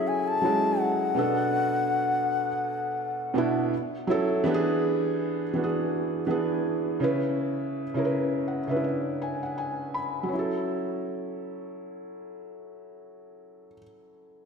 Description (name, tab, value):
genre	R&B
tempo	82 BPM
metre	4/4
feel	swing 58% on 16ths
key	F# minor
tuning	A4 = 439 Hz
part	bright bansuri	melody	0.0-3.7 s	F#5 to A5	-27 LUFS	left 5 dB	tape echo
part	felt-muted upright piano	accompaniment	0.0-14.5 s	B2 to B5	-26 LUFS	right 2 dB	none
room	wet lush hall reverb, RT60 2.2 s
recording	dreamy mix soaked in reverb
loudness	-25 LUFS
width	side -6 dB against mid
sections	0.0-4.5 A section; 4.5-10.3 B section; 10.3-13.2 C section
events	felt piano fill 8.1-10.3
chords	0.0 F#m7; 1.2 Bm7; 3.7 F#m7; 4.5 E7; 7.0 C#m7; 10.3 F#m7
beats	0.06 0.79 | 1.52 2.25 2.99 3.72 | 4.45 5.18 5.91 6.64 | 7.38 8.11 8.84 9.57 | 10.30 11.04 11.77 12.50